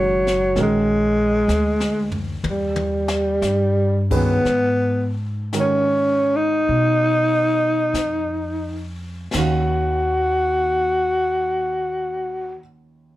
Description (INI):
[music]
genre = jazz ballad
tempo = 41-65 BPM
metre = 4/4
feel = swing 68% on 8ths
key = unclear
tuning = A4 = 442 Hz
[part]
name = growling tenor saxophone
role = melody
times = 0.0-12.6 s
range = F#3 to Gb4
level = -19 LUFS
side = equal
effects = none
[part]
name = warm baby grand piano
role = accompaniment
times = 0.0-13.2 s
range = Eb2 to F5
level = -26 LUFS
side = right 3 dB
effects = none
[part]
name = upright bass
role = bass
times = 0.0-12.5 s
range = F#1 to Cb3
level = -25 LUFS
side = equal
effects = none
[part]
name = jazz brush drum kit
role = drums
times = 0.3-10.0 s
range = brushed snare drum, china cymbal, crash cymbal, hi-hat, kick drum, snare drum, toms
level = -29 LUFS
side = left 2 dB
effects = none
[sound]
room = light reverb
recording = none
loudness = -18 LUFS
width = side -15 dB against mid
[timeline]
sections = 0.0-4.4 A section; 4.4-9.3 B section; 9.3-13.2 C section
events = slowing down 0.6-9.3; drum fill 1.5-3.4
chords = 0.0 F#69; 0.6 A#7alt; 2.4 D#7alt; 4.4 Abm7; 9.3 Ebm9